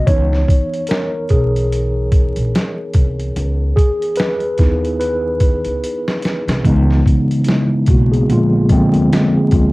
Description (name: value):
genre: lo-fi hip hop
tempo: 73 BPM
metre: 4/4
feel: swing 58% on 16ths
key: C# dorian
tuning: A4 = 439 Hz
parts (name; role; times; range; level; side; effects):
- mellow tine electric piano; accompaniment; 0.0-9.7 s; C#3 to C#5; -16 LUFS; equal; medium stereo tremolo, cassette tape, low-pass filter
- upright bass; bass; 0.0-9.7 s; A#1 to D#2; -18 LUFS; equal; none
- trip hop sampler-style drum kit; drums; 0.1-9.7 s; hi-hat, kick drum, snare drum; -15 LUFS; equal; cassette tape
room: light reverb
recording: home recording on cassette, vinyl crackle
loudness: -13 LUFS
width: side -22 dB against mid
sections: 0.0-6.6 A section; 6.6-9.7 A section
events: tine electric piano solo 0.0-6.6; drum fill 5.8-6.6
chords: 0.1 C#m9; 8.3 A#7